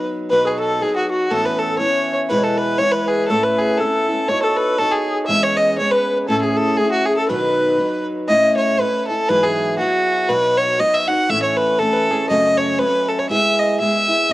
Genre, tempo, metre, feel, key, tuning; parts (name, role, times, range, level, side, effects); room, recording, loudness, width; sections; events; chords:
celtic folk, Celtic polka; 120 BPM; 2/4; swing 57% on 8ths; A4 = 440 Hz
warm fiddle; melody; 0.0-14.3 s; F#4 to F#5; -17 LUFS; equal; cassette tape
picked steel-string acoustic guitar; accompaniment; 0.0-14.3 s; E2 to C#5; -21 LUFS; equal; cassette tape
bright baroque flute; second line; 0.3-8.1 s; F#4 to E5; -23 LUFS; left 2 dB; cassette tape
light reverb, small room ambience; home recording on cassette; -15 LUFS; side -17 dB against mid
0.3-8.3 A section; 8.3-14.3 B section
0.3 B; 1.3 Aadd9; 2.3 E; 3.3 Aadd9; 4.3 Badd9; 5.3 E6; 6.3 A; 7.3 B; 8.3 A; 9.3 Eadd9/G#; 10.3 B; 11.3 A; 12.3 F#m; 13.3 E/G#